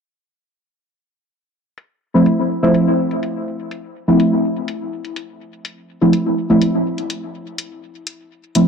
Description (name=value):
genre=dub techno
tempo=124 BPM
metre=4/4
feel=straight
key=unclear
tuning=A4 = 440 Hz
part: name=electronic hi-hat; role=drums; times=1.8-8.7 s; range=none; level=-28 LUFS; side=left 4 dB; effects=overdrive, low-pass filter on hats
part: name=deep mellow chord stab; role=stabs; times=2.1-8.7 s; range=F3 to E4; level=-15 LUFS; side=equal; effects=chorus, phaser, dub echo
room=wet spring reverb, RT60 2.6 s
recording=echo-heavy mix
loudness=-15 LUFS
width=side -6 dB against mid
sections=1.5-8.7 A section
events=filter sweep on drum 1.5-8.7; filter sweep on synth stab 1.5-8.7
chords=1.5 Fmaj7